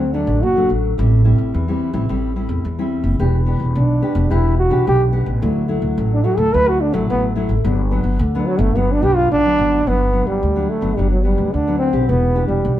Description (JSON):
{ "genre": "samba and choro", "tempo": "108 BPM", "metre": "4/4", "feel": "straight", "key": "G major", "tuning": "A4 = 440 Hz", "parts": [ { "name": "breathy trombone", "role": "melody", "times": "0.0-12.8 s", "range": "D3 to B4", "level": "-17 LUFS", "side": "right 1 dB", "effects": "none" }, { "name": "nylon-string guitar", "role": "accompaniment", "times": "0.0-12.8 s", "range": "G2 to G4", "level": "-22 LUFS", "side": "left 3 dB", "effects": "none" }, { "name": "upright bass", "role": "bass", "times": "0.0-12.8 s", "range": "E1 to E2", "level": "-18 LUFS", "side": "equal", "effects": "none" } ], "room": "moderate studio reverb, RT60 0.7 s", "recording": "heard from further back in the room", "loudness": "-15 LUFS", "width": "side -12 dB against mid", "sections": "0.0-9.9 A section; 9.9-12.8 B section", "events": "trombone solo 0.0-9.9", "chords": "0.0 D; 1.0 Am7; 3.2 Em7; 5.4 Dadd9; 7.6 Gmaj7; 12.1 Em7" }